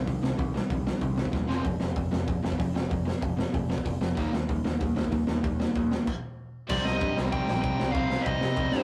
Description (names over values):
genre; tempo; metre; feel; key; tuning
punk rock; 190 BPM; 4/4; straight; C minor; A4 = 440 Hz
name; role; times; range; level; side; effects
crunchy overdriven guitar; riff; 0.0-8.8 s; F2 to Eb4; -34 LUFS; equal; none
crunchy overdriven guitar; riff; 0.0-8.8 s; C3 to Eb4; -36 LUFS; equal; none
raw garage drum kit; drums; 0.0-8.8 s; crash cymbal, hi-hat, kick drum, ride cymbal, snare drum; -33 LUFS; equal; none
growling picked electric bass; bass; 0.1-8.8 s; F1 to C3; -34 LUFS; equal; overdrive
dark smooth lead guitar; melody; 6.7-8.8 s; D5 to G5; -33 LUFS; equal; overdrive
high-gain distorted guitar; riff; 6.7-8.8 s; C3 to C4; -42 LUFS; equal; none
room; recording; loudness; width
wet studio reverb, RT60 0.6 s; rough rehearsal-room recording; -28 LUFS; mono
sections
0.0-6.7 A section; 6.7-8.8 B section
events
drum fill 1.3-1.6; stop 6.1-6.7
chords
0.0 Cm; 1.5 Fm; 4.2 Eb; 6.7 Cm